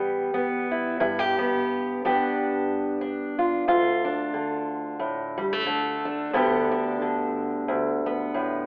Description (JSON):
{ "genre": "folk, solo fingerstyle acoustic guitar", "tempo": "90 BPM", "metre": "4/4", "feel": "swing 56% on 8ths", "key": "D dorian", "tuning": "A4 = 441 Hz", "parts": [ { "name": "fingerpicked steel-string acoustic guitar", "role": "solo", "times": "0.0-8.7 s", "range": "D2 to G4", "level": "-23 LUFS", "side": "equal", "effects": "none" } ], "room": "moderate large studio reverb, RT60 1.5 s", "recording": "worn, warbling old tape, cassette tape, warbly pitch drift, telephone sound", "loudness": "-23 LUFS", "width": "side -40 dB against mid", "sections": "0.0-3.7 A section; 3.7-8.7 B section", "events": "none", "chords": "0.0 Em; 1.0 G; 3.7 Dm; 6.3 G/D", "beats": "0.32 | 0.99 1.66 2.33 3.00 | 3.67 4.33 5.00 5.67 | 6.34 7.01 7.68 8.35" }